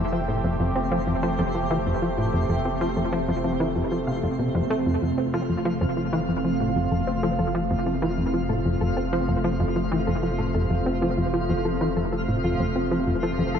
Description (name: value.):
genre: ambient, sequencer-driven space music.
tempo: 95 BPM.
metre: 4/4.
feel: straight.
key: F major.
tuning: A4 = 442 Hz.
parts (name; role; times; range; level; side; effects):
sweeping resonant pad; sustained chords; 0.0-13.6 s; C3 to G4; -26 LUFS; right 1 dB; lush chorus, shimmer reverb.
soft round pluck; arpeggios; 0.0-13.6 s; C4 to F5; -35 LUFS; moving between left 5 dB and right 1 dB; none.
plucky analog bass; riff; 0.0-13.6 s; F2 to C4; -25 LUFS; equal; wide subtle chorus, tape echo, shimmer reverb.
warm sub bass; bass; 0.0-13.6 s; F1; -34 LUFS; equal; none.
twinkling granular texture; texture; 0.0-13.6 s; F3 to F5; -37 LUFS; equal; built-in reverb, shimmer reverb.
room: moderate plate reverb, RT60 2.3 s.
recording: cassette tape, nothing above 7.7 kHz.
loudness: -22 LUFS.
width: side -8 dB against mid.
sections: 0.0-13.6 A section.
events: fade-in on synth texture 0.0-13.6.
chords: 0.0 F.